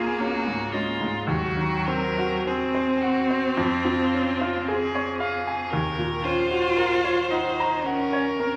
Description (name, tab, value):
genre	classical, slow romantic movement for piano trio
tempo	48-58 BPM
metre	4/4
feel	rubato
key	Db major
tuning	A4 = 442 Hz
part	rich violin	melody	0.0-8.6 s	F4 to C5	-32 LUFS	equal	none
part	rich cello	second line	0.0-8.6 s	Gb3 to F4	-28 LUFS	equal	none
part	clear grand piano	accompaniment	0.0-8.6 s	Db2 to Bb5	-29 LUFS	equal	none
room	wet recital hall reverb, RT60 1.5 s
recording	vinyl crackle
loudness	-24 LUFS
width	mono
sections	0.0-8.6 A section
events	none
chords	0.0 Db; 1.3 Cdim/Eb; 3.6 Db/F; 5.7 Ebm7